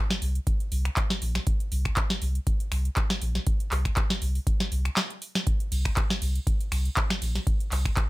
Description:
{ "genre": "acid house", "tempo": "120 BPM", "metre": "4/4", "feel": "swing 54% on 16ths", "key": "unclear", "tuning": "A4 = 440 Hz", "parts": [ { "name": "booming analog drum machine", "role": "drums", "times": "0.1-8.1 s", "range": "finger snaps, handclaps, hi-hat, ride cymbal, snare drum", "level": "-29 LUFS", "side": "equal", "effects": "none" }, { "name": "warm sub bass", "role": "bass", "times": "0.2-7.9 s", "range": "Bb1 to C2", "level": "-26 LUFS", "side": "equal", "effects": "sidechain pumping" }, { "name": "electronic kick drum", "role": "drums", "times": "0.5-8.1 s", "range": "none", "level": "-27 LUFS", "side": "equal", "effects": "none" } ], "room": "little or no reverb", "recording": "none", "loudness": "-24 LUFS", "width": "side -19 dB against mid", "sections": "0.0-8.1 A section", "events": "drum fill 5.0-5.5", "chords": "none" }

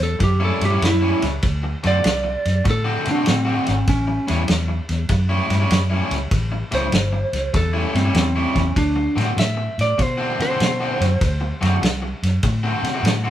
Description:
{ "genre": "electric blues shuffle", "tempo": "98 BPM", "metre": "4/4", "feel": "swing 66% on 8ths", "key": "unclear", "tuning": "A4 = 440 Hz", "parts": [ { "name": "lightly driven lead guitar", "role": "melody", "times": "0.0-11.6 s", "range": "C4 to E5", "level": "-22 LUFS", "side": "right 1 dB", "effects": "none" }, { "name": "vintage muted fingered electric bass", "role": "bass", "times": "0.0-13.3 s", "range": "G1 to C3", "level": "-21 LUFS", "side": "equal", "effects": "none" }, { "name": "warm soul drum kit", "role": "drums", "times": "0.0-13.2 s", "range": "kick drum, ride cymbal, snare drum", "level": "-23 LUFS", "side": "equal", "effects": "none" }, { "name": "overdriven semi-hollow guitar", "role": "riff", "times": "0.2-13.3 s", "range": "A2 to F#4", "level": "-25 LUFS", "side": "left 1 dB", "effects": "spring reverb" } ], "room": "moderate studio ambience, RT60 0.5 s", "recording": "band playing live in one room", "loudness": "-17 LUFS", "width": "side -12 dB against mid", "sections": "0.0-13.3 A section", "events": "none", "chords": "0.0 A7; 1.4 D7; 3.9 A7; 8.8 D7" }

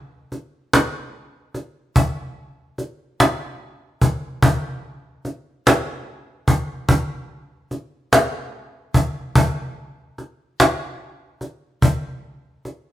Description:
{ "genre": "blues", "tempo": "49 BPM (dotted quarters)", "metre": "12/8", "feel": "straight", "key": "none", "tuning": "none", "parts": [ { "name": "cajon", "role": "drums", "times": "0.3-12.8 s", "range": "none", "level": "-17 LUFS", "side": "equal", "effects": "none" } ], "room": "moderate large studio reverb, RT60 1.3 s", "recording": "band playing live in one room", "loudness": "-18 LUFS", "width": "side -13 dB against mid", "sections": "0.0-12.9 A section", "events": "none", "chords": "none" }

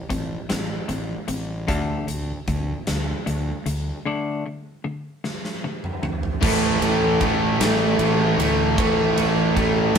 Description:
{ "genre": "quiet-loud alternative rock", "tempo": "51 BPM (dotted quarters)", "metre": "6/8", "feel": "straight", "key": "unclear", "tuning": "A4 = 440 Hz", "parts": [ { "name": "twangy electric guitar", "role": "arpeggios", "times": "0.0-6.4 s", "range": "D3 to D4", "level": "-28 LUFS", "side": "left 3 dB", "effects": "none" }, { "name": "fuzz fingered electric bass", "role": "bass", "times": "0.1-10.0 s", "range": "A1 to D2", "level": "-27 LUFS", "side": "equal", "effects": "overdrive" }, { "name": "huge arena drum kit", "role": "drums", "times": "0.1-10.0 s", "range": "crash cymbal, hi-hat, kick drum, ride cymbal, snare drum, toms", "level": "-26 LUFS", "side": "right 1 dB", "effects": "none" }, { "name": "distorted electric guitar", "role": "riff", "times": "6.4-10.0 s", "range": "A2 to A3", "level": "-23 LUFS", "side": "right 6 dB", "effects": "distortion" }, { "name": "fuzz guitar", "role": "riff", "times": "6.4-10.0 s", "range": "A2 to A3", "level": "-24 LUFS", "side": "right 1 dB", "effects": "distortion" }, { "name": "thick fuzz guitar", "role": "riff", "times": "6.4-10.0 s", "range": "A2 to A3", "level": "-22 LUFS", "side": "left 4 dB", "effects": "distortion" } ], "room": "moderate studio reverb, RT60 0.8 s", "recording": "band playing live in one room", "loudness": "-20 LUFS", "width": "side -7 dB against mid", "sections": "0.0-6.4 A section; 6.4-10.0 B section", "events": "break 4.1-6.4; drum fill 5.2-6.4", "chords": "0.0 Am; 1.7 D5; 6.4 A5" }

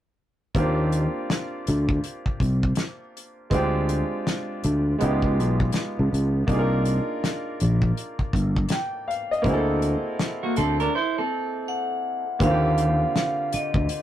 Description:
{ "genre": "R&B, neo-soul", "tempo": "81 BPM", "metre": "4/4", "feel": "swing 63% on 16ths", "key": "Eb major", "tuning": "A4 = 435 Hz", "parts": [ { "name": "clear grand piano", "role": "accompaniment", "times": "0.5-14.0 s", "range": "D3 to G5", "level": "-28 LUFS", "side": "right 1 dB", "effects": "none" }, { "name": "damped 70s drum kit", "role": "drums", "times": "0.5-14.0 s", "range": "hi-hat, kick drum, snare drum", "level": "-26 LUFS", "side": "equal", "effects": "none" }, { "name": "sustaining fretless electric bass", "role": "bass", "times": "0.6-13.9 s", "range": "G1 to Eb2", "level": "-22 LUFS", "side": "equal", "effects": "none" }, { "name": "clean electric guitar", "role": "second line", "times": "10.4-12.2 s", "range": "Bb3 to C5", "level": "-25 LUFS", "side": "right 3 dB", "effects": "none" }, { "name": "vibraphone with hard mallets", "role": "melody", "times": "11.7-14.0 s", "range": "Eb5 to F#5", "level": "-25 LUFS", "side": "right 1 dB", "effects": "none" } ], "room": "moderate booth ambience, RT60 0.2 s", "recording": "rough rehearsal-room recording, tube saturation", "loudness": "-22 LUFS", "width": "side -12 dB against mid", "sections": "0.5-12.4 A section; 12.4-14.0 B section", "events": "break 10.9-12.4", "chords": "0.5 Ebmaj9; 3.5 Dm7b5; 5.0 Db7#11; 6.5 Cm11; 9.4 D7b13; 12.4 Ebmaj9" }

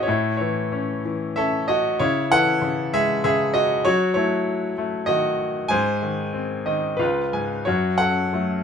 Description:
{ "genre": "classical, lyrical solo piano", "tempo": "95 BPM", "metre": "3/4", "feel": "uneven beats, rubato", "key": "C# harmonic minor", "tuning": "A4 = 439 Hz", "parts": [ { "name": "bright concert grand piano", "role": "solo", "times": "0.0-8.6 s", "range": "C#2 to G#5", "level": "-20 LUFS", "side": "left 1 dB", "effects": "none" } ], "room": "little or no reverb", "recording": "close, detailed microphones", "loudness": "-20 LUFS", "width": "side -7 dB against mid", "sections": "0.0-7.7 A section", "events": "grand piano fill 6.3-7.7", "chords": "0.1 A; 2.0 C#m; 3.9 D#dim; 5.7 G#; 7.0 C#7; 7.7 F#m" }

